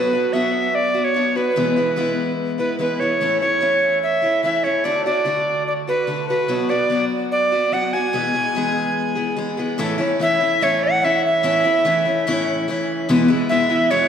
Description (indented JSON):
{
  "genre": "country",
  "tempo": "146 BPM",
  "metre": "4/4",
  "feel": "straight",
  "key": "A major",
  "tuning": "A4 = 440 Hz",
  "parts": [
    { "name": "bright reedy alto recorder", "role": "melody", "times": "0.0-14.1 s", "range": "B4 to G#5", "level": "-19 LUFS", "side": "right 1 dB", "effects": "none" },
    { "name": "picked acoustic archtop guitar", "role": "accompaniment", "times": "0.0-14.1 s", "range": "E2 to G#4", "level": "-21 LUFS", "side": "left 1 dB", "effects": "none" }
  ],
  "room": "wet concert hall reverb, RT60 1.8 s",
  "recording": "recorded in a church or concert hall",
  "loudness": "-17 LUFS",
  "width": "side -8 dB against mid",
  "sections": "0.0-9.8 A section; 9.8-14.1 B section",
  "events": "none",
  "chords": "0.0 Bm; 1.6 E; 3.2 A; 4.9 D; 6.5 Bm; 8.1 E; 9.8 A; 13.1 E",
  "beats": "0.33 0.74 1.15 | 1.56 1.97 2.38 2.79 | 3.21 3.62 4.03 4.44 | 4.85 5.26 5.68 6.09 | 6.50 6.91 7.32 7.74 | 8.15 8.56 8.97 9.38 | 9.79 10.21 10.62 11.03 | 11.44 11.85 12.26 12.67 | 13.08 13.49 13.91"
}